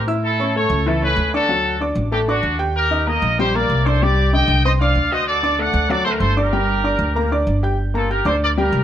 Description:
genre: latin, salsa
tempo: 191 BPM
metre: 4/4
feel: straight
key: G minor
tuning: A4 = 439 Hz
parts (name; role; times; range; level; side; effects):
- bright trumpet section; melody; 0.0-8.8 s; D4 to G5; -20 LUFS; equal; none
- upright bass; bass; 0.0-8.8 s; G1 to A2; -20 LUFS; equal; none
- clear concert grand piano; accompaniment; 0.1-8.8 s; D3 to G6; -21 LUFS; left 1 dB; none
room: moderate large studio reverb, RT60 1.3 s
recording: close, detailed microphones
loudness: -16 LUFS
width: side -10 dB against mid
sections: 0.0-7.8 A section; 7.8-8.8 B section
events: none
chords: 0.2 A; 1.5 D; 2.8 Eb; 4.0 Cmadd9; 5.3 D; 6.5 Gm

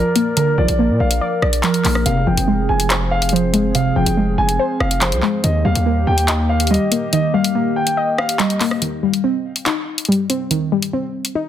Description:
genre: hip hop, drill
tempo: 142 BPM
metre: 4/4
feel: half-time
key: C minor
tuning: A4 = 441 Hz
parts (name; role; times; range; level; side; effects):
- warm concert grand piano; melody; 0.0-8.8 s; Bb4 to Ab5; -22 LUFS; equal; low-pass filter, tape echo
- warbly dusty pluck; accompaniment; 0.0-11.5 s; C3 to Eb5; -19 LUFS; equal; chorus, low-pass filter
- hollow soft pad; sustained chords; 0.0-8.8 s; Eb3 to D5; -25 LUFS; equal; chorus
- hard-hitting 808-style bass; bass; 0.0-6.8 s; F1 to Bb2; -19 LUFS; equal; none
- drill drum kit; drums; 0.2-11.3 s; handclaps, hi-hat, rim click; -20 LUFS; left 1 dB; none
room: light reverb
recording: dense, heavily limited modern master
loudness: -15 LUFS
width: side -10 dB against mid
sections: 0.0-8.8 A section; 8.8-11.5 B section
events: kick muted 7.1-8.8; break 8.8-11.5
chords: 0.0 Bb; 2.1 Fm; 5.4 Eb; 8.8 Cm

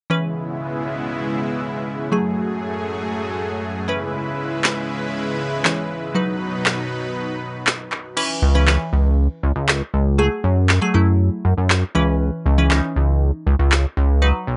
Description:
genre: dance-pop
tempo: 119 BPM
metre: 4/4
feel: straight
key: C# minor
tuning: A4 = 440 Hz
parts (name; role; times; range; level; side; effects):
- glassy wavetable pluck; accompaniment; 0.1-14.6 s; E3 to C#5; -25 LUFS; equal; chorus
- supersaw pad; sustained chords; 0.1-8.2 s; F#2 to B4; -26 LUFS; equal; none
- smooth R&B drum kit; drums; 4.6-13.8 s; crash cymbal, handclaps, snare drum; -21 LUFS; equal; none
- chorused synth bass; bass; 8.4-14.6 s; B1 to F#2; -18 LUFS; equal; none
room: little or no reverb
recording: nothing above 10.6 kHz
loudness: -20 LUFS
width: mono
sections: 0.1-8.2 A section; 8.2-14.6 B section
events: none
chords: 0.1 C#m7; 2.1 F#madd9; 3.9 C#m7; 6.2 B; 8.2 C#m7; 10.2 F#madd9; 12.0 C#m7

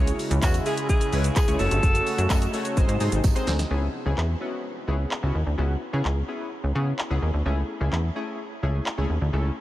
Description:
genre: dance-pop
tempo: 128 BPM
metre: 4/4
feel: straight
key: C# minor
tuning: A4 = 440 Hz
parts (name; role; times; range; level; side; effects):
- chorused retro synth keys; accompaniment; 0.0-9.5 s; G#3 to E5; -31 LUFS; left 1 dB; tremolo, sidechain pumping
- sweeping resonant pad; sustained chords; 0.0-3.7 s; B#2 to F#4; -33 LUFS; right 1 dB; chorus, sidechain pumping
- plucky analog bass; bass; 0.0-9.5 s; F#1 to C#3; -24 LUFS; equal; sidechain pumping
- house drum kit; drums; 0.1-9.0 s; handclaps, hi-hat, kick drum, shaker, snare drum; -27 LUFS; equal; none
- breathy alto saxophone; melody; 0.4-2.5 s; F#4 to A4; -30 LUFS; left 1 dB; diffuse ambient delay
- tambourine; percussion; 0.4-3.3 s; none; -44 LUFS; right 10 dB; none
room: light reverb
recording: none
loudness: -22 LUFS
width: side -15 dB against mid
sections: 0.0-3.7 A section; 3.7-9.6 B section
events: drum fill 3.2-3.7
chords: 0.0 C#m; 1.6 F#m; 2.8 G#; 3.7 C#m7; 7.5 Amaj7/C#

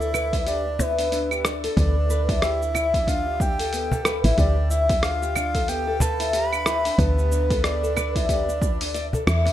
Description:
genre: organic downtempo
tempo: 92 BPM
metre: 4/4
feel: swing 59% on 16ths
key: unclear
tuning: A4 = 442 Hz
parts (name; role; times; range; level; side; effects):
- breathy flute-like synth lead; melody; 0.0-8.9 s; B4 to B5; -27 LUFS; equal; chorus, ping-pong delay, shimmer reverb
- nylon-string guitar; arpeggios; 0.0-9.5 s; B3 to D5; -26 LUFS; left 2 dB; ping-pong delay, shimmer reverb
- woody FM bass; bass; 0.0-9.5 s; A1 to E2; -25 LUFS; equal; none
- dusty soul sampler-style drum kit; drums; 0.0-9.5 s; cabasa, claves, hi-hat, rim click; -28 LUFS; right 1 dB; none
- cajon; percussion; 0.1-9.5 s; none; -26 LUFS; left 1 dB; none
- electronic kick drum; drums; 0.3-8.8 s; none; -24 LUFS; equal; none
room: light reverb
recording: none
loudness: -20 LUFS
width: side -12 dB against mid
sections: 0.0-9.5 A section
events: band accent 9.3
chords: 0.0 Gadd9

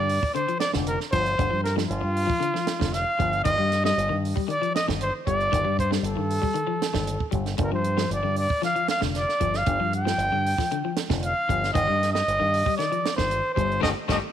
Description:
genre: afrobeat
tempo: 116 BPM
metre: 4/4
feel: straight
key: unclear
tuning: A4 = 436 Hz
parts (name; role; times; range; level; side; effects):
- breathy trumpet; melody; 0.0-14.2 s; F4 to G5; -25 LUFS; right 1 dB; none
- electric guitar at the edge of break-up; arpeggios; 0.0-14.2 s; D3 to A3; -30 LUFS; left 11 dB; none
- fingered electric bass with an envelope filter; bass; 0.0-14.2 s; F1 to G2; -28 LUFS; equal; none
- compact cocktail drum kit; drums; 0.1-14.2 s; hi-hat, kick drum, snare drum; -29 LUFS; right 5 dB; none
room: light reverb, studio ambience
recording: 1960s-style stereo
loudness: -22 LUFS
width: side -10 dB against mid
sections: 0.0-14.3 A section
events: band accent 13.8-14.3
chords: 0.0 G5; 3.5 F9/G (rootless); 7.6 G5; 11.7 F7sus2/G (rootless)

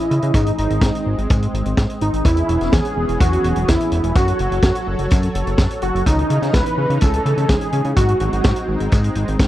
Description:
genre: italo disco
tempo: 126 BPM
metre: 4/4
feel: straight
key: unclear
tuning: A4 = 441 Hz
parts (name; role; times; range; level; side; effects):
- wide unison lead; melody; 0.0-8.9 s; D#4 to B4; -21 LUFS; right 1 dB; tape echo
- warm analog pad; sustained chords; 0.0-9.5 s; E3 to D#5; -26 LUFS; equal; chorus
- fat analog bass; bass; 0.1-9.5 s; E1 to C#3; -20 LUFS; equal; none
- vintage drum kit; drums; 0.1-9.5 s; hi-hat, snare drum; -24 LUFS; equal; none
- kick drum; drums; 0.3-9.5 s; none; -18 LUFS; equal; none
room: small room ambience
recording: dry, close 1970s-style studio recording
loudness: -15 LUFS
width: side -14 dB against mid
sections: 0.0-9.5 A section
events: none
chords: 0.3 G#; 2.3 E6; 4.2 F#m; 6.1 C#madd9; 8.0 G#

